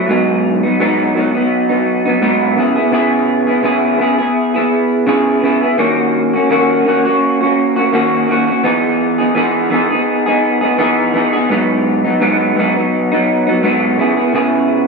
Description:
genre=indie pop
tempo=84 BPM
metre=4/4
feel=swing 55% on 16ths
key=unclear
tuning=A4 = 440 Hz
part: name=electric guitar through a small old amp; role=solo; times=0.0-14.9 s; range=G#2 to G#4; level=-12 LUFS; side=equal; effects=lush chorus, vibrato effect
room=moderate studio reverb, RT60 0.6 s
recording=studio reverb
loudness=-12 LUFS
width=side -4 dB against mid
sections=0.1-14.9 A section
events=none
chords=0.1 G#m7; 2.6 C#m7; 5.8 D#m7; 8.6 Emaj7; 11.5 G#m7; 14.0 C#m7

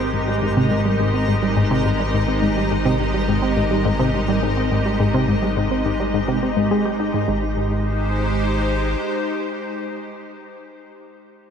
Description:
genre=ambient, sequencer-driven space music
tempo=105 BPM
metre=4/4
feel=straight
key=Ab major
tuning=A4 = 439 Hz
part: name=evolving wavetable pad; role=sustained chords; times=0.0-10.3 s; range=Ab3 to Eb5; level=-23 LUFS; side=equal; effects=ensemble chorus, built-in reverb
part: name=tight sequenced synth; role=riff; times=0.0-7.5 s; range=Ab2 to Eb4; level=-21 LUFS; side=left 1 dB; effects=chorus, ping-pong delay
part: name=fat analog bass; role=bass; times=0.0-9.0 s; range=Ab1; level=-24 LUFS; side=equal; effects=none
part: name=twinkling granular texture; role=texture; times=0.0-7.3 s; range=C4 to Bb4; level=-29 LUFS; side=equal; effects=built-in reverb
room=moderate plate reverb, RT60 3.5 s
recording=echo-heavy mix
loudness=-18 LUFS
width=side -7 dB against mid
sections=0.0-7.3 A section; 7.3-9.6 B section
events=filter sweep on synth arpeggio sound 0.0-7.3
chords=0.0 Abmaj7

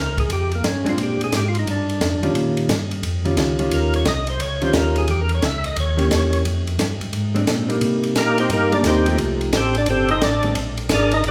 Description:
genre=soul jazz organ trio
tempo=176 BPM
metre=4/4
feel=swing 64% on 8ths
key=unclear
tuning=A4 = 440 Hz
part: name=percussive tonewheel organ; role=melody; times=0.0-11.3 s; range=Bb3 to E5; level=-24 LUFS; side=equal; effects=slow rotary speaker, chorus vibrato
part: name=mellow tonewheel organ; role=bass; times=0.0-11.3 s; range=G1 to C3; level=-25 LUFS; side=equal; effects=chorus vibrato, slow rotary speaker
part: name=compact cocktail drum kit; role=drums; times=0.2-11.3 s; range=hi-hat, kick drum, ride cymbal, snare drum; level=-27 LUFS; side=equal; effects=none
part: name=vintage hollow-body jazz guitar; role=accompaniment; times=0.8-10.6 s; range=Eb3 to G4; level=-25 LUFS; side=equal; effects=none
room=wet recital hall reverb, RT60 1.5 s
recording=recorded in a church or concert hall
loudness=-20 LUFS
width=mono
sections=0.0-11.3 A section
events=tonewheel organ solo 0.0-11.3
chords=0.0 Eb9 (rootless); 1.0 Bb9; 2.3 Eb9; 5.1 Edim7; 6.5 Bb9; 7.8 Cm7; 9.2 F9; 10.6 Bb7

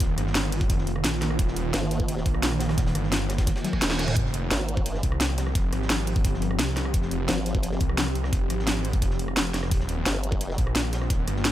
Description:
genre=dark technical drum and bass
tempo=173 BPM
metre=4/4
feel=straight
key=F minor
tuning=A4 = 441 Hz
part: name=swarming drone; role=sustained chords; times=0.0-11.5 s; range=Eb3 to G4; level=-31 LUFS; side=equal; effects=built-in reverb, sidechain pumping
part: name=wide detuned saw bass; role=bass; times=0.0-11.5 s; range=Eb1 to C2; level=-28 LUFS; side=equal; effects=chorus
part: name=crunchy breakbeat drum kit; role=drums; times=0.0-11.5 s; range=hi-hat, snare drum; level=-40 LUFS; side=equal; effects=none
part: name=drum and bass drum kit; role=drums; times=0.0-11.5 s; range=hi-hat, rim click, snare drum, toms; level=-27 LUFS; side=equal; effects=overdrive
part: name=electronic kick drum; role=drums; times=0.0-11.2 s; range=none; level=-25 LUFS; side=equal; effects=overdrive
part: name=formant-sweep wobble bass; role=bass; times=1.7-2.2, 4.5-5.0, 7.3-7.8, 10.1-10.6 s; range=G1 to Ab1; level=-28 LUFS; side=equal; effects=chorus
part: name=reverse cymbal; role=sound effects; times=3.6-4.2 s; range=none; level=-33 LUFS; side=right 3 dB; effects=none
room=light reverb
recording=none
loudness=-23 LUFS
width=side -13 dB against mid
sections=0.0-11.5 A section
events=reverse cymbal 3.6-4.2; drum fill 3.6-4.2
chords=0.0 Ebadd9; 4.2 Fm; 9.7 Ebadd9

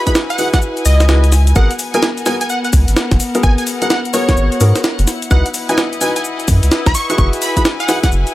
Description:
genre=UK garage, two-step garage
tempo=128 BPM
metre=4/4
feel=swing 64% on 16ths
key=G# minor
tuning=A4 = 436 Hz
part: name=dark grand piano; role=stabs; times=0.0-8.3 s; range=B3 to B4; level=-20 LUFS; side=left 1 dB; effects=digital delay
part: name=rich chamber string section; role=texture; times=0.0-8.3 s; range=B3 to G#5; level=-23 LUFS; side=left 2 dB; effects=sidechain pumping
part: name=plucky unison lead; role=melody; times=0.1-8.1 s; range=C#5 to C#6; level=-20 LUFS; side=right 1 dB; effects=vintage 12-bit sampler grit, digital delay
part: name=breakbeat sampler-style drum kit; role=drums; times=0.1-8.3 s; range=hi-hat, shaker, snare drum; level=-19 LUFS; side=equal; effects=none
part: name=electronic kick drum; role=drums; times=0.1-8.1 s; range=none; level=-14 LUFS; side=equal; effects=overdrive
part: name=soft dub sub bass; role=bass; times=0.9-8.2 s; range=F#1 to G#2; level=-12 LUFS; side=equal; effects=none
room=little or no reverb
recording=none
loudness=-12 LUFS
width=side -16 dB against mid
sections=0.0-8.3 A section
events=none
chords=0.0 F#9sus4; 1.6 G#m9; 5.1 C#m11 (rootless); 6.9 F#9sus4

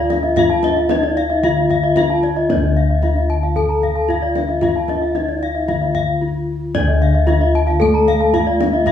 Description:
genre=Balinese gamelan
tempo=113 BPM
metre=4/4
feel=straight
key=unclear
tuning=A4 = 442 Hz
part: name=gamelan-type bronze metallophone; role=melody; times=0.0-8.9 s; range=D4 to A4-30c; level=-20 LUFS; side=left 1 dB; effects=none
part: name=gamelan-type bronze metallophone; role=arpeggios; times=0.0-8.9 s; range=D5 to Bb5-20c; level=-23 LUFS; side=right 1 dB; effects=none
part: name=gamelan-type bossed gongs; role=bass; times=0.0-8.9 s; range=D2 to F4-30c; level=-19 LUFS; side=left 2 dB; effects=none
part: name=gamelan-type bronze metallophone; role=arpeggios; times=0.1-8.9 s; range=D5 to A5-30c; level=-22 LUFS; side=left 5 dB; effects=none
part: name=kendang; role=percussion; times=0.1-8.9 s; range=none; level=-25 LUFS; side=right 2 dB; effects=none
part: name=gamelan-type bronze metallophone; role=accompaniment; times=6.8-8.9 s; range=D3 to A3-30c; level=-23 LUFS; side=right 1 dB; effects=none
room=wet large studio reverb, RT60 1.2 s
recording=band playing live in one room, small room reverb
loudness=-14 LUFS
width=side -9 dB against mid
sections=0.0-8.9 A section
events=none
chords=none

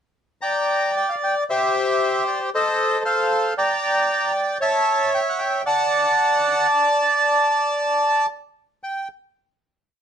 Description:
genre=tango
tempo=114 BPM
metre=4/4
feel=rubato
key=G minor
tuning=A4 = 438 Hz
part: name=bandoneon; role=solo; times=0.4-9.1 s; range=G4 to Bb5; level=-18 LUFS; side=equal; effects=none
room=light reverb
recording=dark, warm production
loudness=-18 LUFS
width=side -8 dB against mid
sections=0.4-8.8 A section; 8.8-10.0 final note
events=none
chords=0.4 Gm; 1.5 C/G; 2.5 F; 3.6 Gm; 4.6 A; 5.7 D; 6.7 N.C.

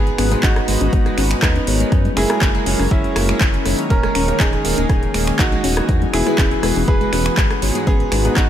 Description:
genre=progressive house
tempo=121 BPM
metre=4/4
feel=straight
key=G# minor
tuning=A4 = 439 Hz
part: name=bright concert grand piano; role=melody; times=0.0-8.5 s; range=B3 to B4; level=-22 LUFS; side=right 1 dB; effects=sidechain pumping, ping-pong delay
part: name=airy breathy pad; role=sustained chords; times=0.0-8.5 s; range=D#3 to B4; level=-26 LUFS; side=equal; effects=chorus, sidechain pumping
part: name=felt-muted upright piano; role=stabs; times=0.0-8.4 s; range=G#2 to C#5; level=-25 LUFS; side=left 2 dB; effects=analog chorus, sidechain pumping, ping-pong delay
part: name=round analog bass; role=bass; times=0.0-8.5 s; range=D#1 to F#2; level=-22 LUFS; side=equal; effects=sidechain pumping
part: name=deep house drum kit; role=drums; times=0.1-8.5 s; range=finger snaps, handclaps, hi-hat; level=-24 LUFS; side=right 1 dB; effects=overdrive, sidechain pumping on hats, small room reverb
part: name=glassy wavetable pluck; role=arpeggios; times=0.2-8.4 s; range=G#3 to C#4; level=-25 LUFS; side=equal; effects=chorus, cassette tape, sidechain pumping, ping-pong delay
part: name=electronic rim click and congas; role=percussion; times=0.2-8.5 s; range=none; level=-29 LUFS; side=left 3 dB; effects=none
part: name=electronic kick drum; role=drums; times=0.4-8.5 s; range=none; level=-17 LUFS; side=equal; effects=overdrive, small room reverb
room=light reverb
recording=none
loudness=-14 LUFS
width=side -10 dB against mid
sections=0.0-8.5 A section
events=none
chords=0.0 G#m7; 1.9 F#add9; 3.9 D#7sus4; 5.9 Eadd9; 7.9 G#m7

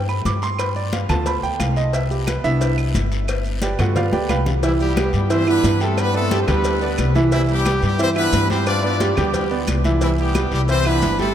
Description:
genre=latin, salsa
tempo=178 BPM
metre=4/4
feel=straight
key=C major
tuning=A4 = 440 Hz
part: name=clear concert grand piano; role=accompaniment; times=0.0-11.3 s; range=E3 to D6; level=-21 LUFS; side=right 3 dB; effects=none
part: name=upright bass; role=bass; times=0.0-11.3 s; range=G1 to G2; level=-21 LUFS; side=left 1 dB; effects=none
part: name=claves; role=percussion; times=0.1-11.0 s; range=none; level=-38 LUFS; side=right 5 dB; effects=none
part: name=congas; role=percussion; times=0.1-11.3 s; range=none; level=-28 LUFS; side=left 2 dB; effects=none
part: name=maracas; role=percussion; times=0.1-11.3 s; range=none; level=-38 LUFS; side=right 6 dB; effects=none
part: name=cowbell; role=percussion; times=0.3-11.2 s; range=none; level=-30 LUFS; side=left 6 dB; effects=none
part: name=guiro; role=percussion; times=0.3-11.3 s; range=none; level=-36 LUFS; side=left 7 dB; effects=none
part: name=brilliant horn section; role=melody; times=4.6-11.3 s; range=E3 to D5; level=-22 LUFS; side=left 2 dB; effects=tape echo
room=moderate cathedral reverb, RT60 5.2 s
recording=in a vast, echoing space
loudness=-17 LUFS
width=side -10 dB against mid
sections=0.0-4.6 A section; 4.6-11.3 B section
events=grand piano solo 0.0-4.6; drum fill 4.1-4.6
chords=0.0 Cmaj7(no3); 0.6 G7; 1.9 Cmaj7; 3.3 G7; 4.6 Cmaj7; 10.0 G

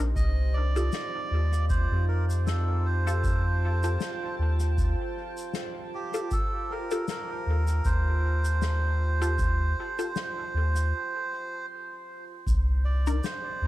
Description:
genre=ambient dub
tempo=78 BPM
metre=4/4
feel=swing 56% on 16ths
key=unclear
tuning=A4 = 440 Hz
part: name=deep dark ambient pad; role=sustained chords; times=0.0-13.7 s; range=C4 to A5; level=-38 LUFS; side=right 2 dB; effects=chorus, built-in reverb
part: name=filtered dub chord stab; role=stabs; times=0.0-13.2 s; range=D4 to Bb4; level=-36 LUFS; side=left 2 dB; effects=phaser, dub echo
part: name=soft dub sub bass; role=bass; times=0.0-13.7 s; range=Bb1 to F2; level=-25 LUFS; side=equal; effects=none
part: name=melodica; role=melody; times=0.2-13.7 s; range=G4 to Eb5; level=-33 LUFS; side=right 3 dB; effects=dub echo
part: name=electronic kick drum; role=drums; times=0.2-12.6 s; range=none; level=-29 LUFS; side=equal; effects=none
part: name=shaker and snare drum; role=drums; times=0.2-13.4 s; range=none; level=-38 LUFS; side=left 6 dB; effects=dub echo
room=light reverb, small room ambience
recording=none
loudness=-25 LUFS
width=side -16 dB against mid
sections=0.0-12.5 A section; 12.5-13.7 B section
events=break 10.9-12.5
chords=0.2 Fadd9/C; 12.5 Cm9

